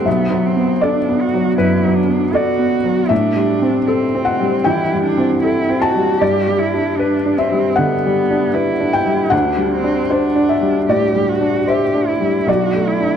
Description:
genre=neoclassical piano and strings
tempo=77 BPM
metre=4/4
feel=rubato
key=unclear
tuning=A4 = 440 Hz
part: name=warm cello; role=second line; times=0.0-13.2 s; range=B3 to G4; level=-20 LUFS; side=right 4 dB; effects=none
part: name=felt-muted upright piano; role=accompaniment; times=0.0-13.2 s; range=B1 to A5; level=-15 LUFS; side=left 1 dB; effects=none
room=wet plate reverb, RT60 3.6 s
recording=none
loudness=-14 LUFS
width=side -8 dB against mid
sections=0.0-13.2 A section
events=none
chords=0.1 Bm7; 3.1 Am7; 6.2 G; 9.3 D7sus4; 12.5 Bm7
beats=| 0.06 0.82 1.58 2.34 | 3.11 3.88 4.66 5.44 | 6.21 6.99 7.77 8.55 | 9.32 10.11 10.89 11.68 | 12.48

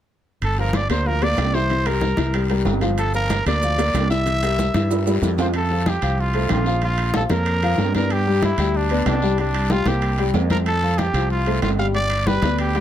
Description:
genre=latin, salsa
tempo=187 BPM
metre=4/4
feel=straight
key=F major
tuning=A4 = 440 Hz
part: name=growling trumpet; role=melody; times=0.4-12.8 s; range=D4 to F5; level=-24 LUFS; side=right 1 dB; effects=none
part: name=mellow fretless electric bass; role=bass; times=0.4-12.8 s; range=G1 to G2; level=-22 LUFS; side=right 1 dB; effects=none
part: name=congas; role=percussion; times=0.4-12.8 s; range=none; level=-27 LUFS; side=left 1 dB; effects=none
part: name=guiro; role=percussion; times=0.4-12.8 s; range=none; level=-37 LUFS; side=left 5 dB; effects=none
part: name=timbales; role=percussion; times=0.4-12.8 s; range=none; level=-29 LUFS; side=right 6 dB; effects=none
part: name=dark upright piano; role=accompaniment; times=0.6-12.8 s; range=E3 to G5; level=-24 LUFS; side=left 3 dB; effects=none
part: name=maracas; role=percussion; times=3.0-5.5 s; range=none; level=-39 LUFS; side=right 5 dB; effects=none
room=light reverb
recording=none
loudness=-18 LUFS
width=side -10 dB against mid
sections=0.4-5.5 A section; 5.5-12.8 B section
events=drum fill 4.9-5.5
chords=0.4 Gm7; 1.7 C7; 3.0 Gm7; 4.3 C7; 5.5 F; 6.8 Bbm; 8.1 G; 9.4 C5; 10.7 F; 11.9 G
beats=| 0.42 0.74 1.06 1.38 | 1.70 2.02 2.35 2.67 | 2.98 3.31 3.63 3.95 | 4.27 4.58 4.91 5.22 | 5.54 5.87 6.18 6.50 | 6.83 7.14 7.46 7.78 | 8.10 8.42 8.74 9.06 | 9.38 9.70 10.02 10.35 | 10.66 10.98 11.30 11.63 | 11.95 12.27 12.59

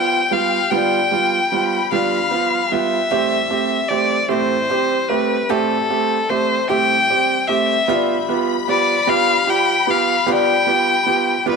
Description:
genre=six-eight pop ballad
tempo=50 BPM (dotted quarters)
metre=6/8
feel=straight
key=A minor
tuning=A4 = 439 Hz
part: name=rich violin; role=melody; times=0.0-11.6 s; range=A4 to G5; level=-18 LUFS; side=left 3 dB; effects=none
part: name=warm symphonic violin section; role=second line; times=0.0-3.1, 7.9-11.6 s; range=G5 to B5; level=-25 LUFS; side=left 12 dB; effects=none
part: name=clear concert grand piano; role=accompaniment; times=0.0-11.6 s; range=G3 to G4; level=-20 LUFS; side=right 10 dB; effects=none
part: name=picked acoustic archtop guitar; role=arpeggios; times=0.0-11.6 s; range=G2 to G4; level=-27 LUFS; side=left 13 dB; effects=none
room=moderate echo chamber reverb, RT60 1.7 s, studio reverb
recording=1960s-style stereo with parts hard left and right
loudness=-15 LUFS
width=side -5 dB against mid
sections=0.0-3.1 A section; 3.1-11.6 A section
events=none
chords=0.0 G7; 3.1 Am7; 7.9 G7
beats=| 0.72 1.91 | 3.10 4.30 | 5.49 6.69 | 7.88 9.08 | 10.27 11.47

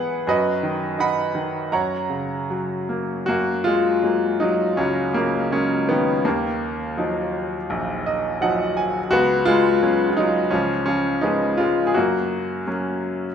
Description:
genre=classical, lyrical solo piano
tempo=75-87 BPM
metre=4/4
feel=rubato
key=F# major from 3.3 s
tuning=A4 = 440 Hz
part: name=bright grand piano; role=solo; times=0.0-13.3 s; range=A#1 to B5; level=-19 LUFS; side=equal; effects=none
room=moderate concert hall reverb, RT60 1.8 s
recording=minimal, uncompressed stereo recording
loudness=-19 LUFS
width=side -8 dB against mid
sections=0.0-3.3 A section; 3.3-13.3 B section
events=grand piano fill 7.7-9.1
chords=0.3 B/F#; 1.7 F#; 3.3 F#add9; 6.3 D#madd9; 9.1 C#7sus4; 10.5 C#7; 12.0 F#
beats=| 0.28 0.99 1.72 2.50 | 3.28 4.04 4.78 5.52 | 6.25 6.98 7.71 8.42 | 9.12 9.83 10.53 11.23 | 11.96 12.68

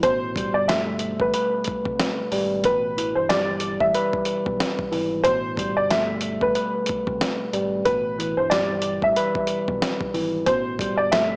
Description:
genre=hip hop, boom-bap hip-hop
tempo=92 BPM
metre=4/4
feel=swing 57% on 16ths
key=A minor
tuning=A4 = 439 Hz
part: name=clear upright piano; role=melody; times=0.0-11.4 s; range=B4 to E5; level=-22 LUFS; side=equal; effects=high-pass filter, low-pass filter, analog delay
part: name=tine electric piano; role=accompaniment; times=0.0-11.4 s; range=B2 to B4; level=-25 LUFS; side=equal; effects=high-pass filter, low-pass filter
part: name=deep dub fingered electric bass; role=bass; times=0.0-11.4 s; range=G1 to C2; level=-35 LUFS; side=equal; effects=none
part: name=dusty soul sampler-style drum kit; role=drums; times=0.0-11.3 s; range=hi-hat, kick drum, snare drum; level=-27 LUFS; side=equal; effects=none
room=light reverb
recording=small speaker sound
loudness=-20 LUFS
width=side -31 dB against mid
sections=0.0-11.4 A section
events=none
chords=0.0 A7sus2; 2.6 Em; 5.2 A7sus2; 7.9 Em; 10.5 Am9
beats=| 0.03 0.69 1.34 1.99 | 2.64 3.29 3.95 4.60 | 5.25 5.90 6.55 7.21 | 7.86 8.51 9.16 9.81 | 10.47 11.12

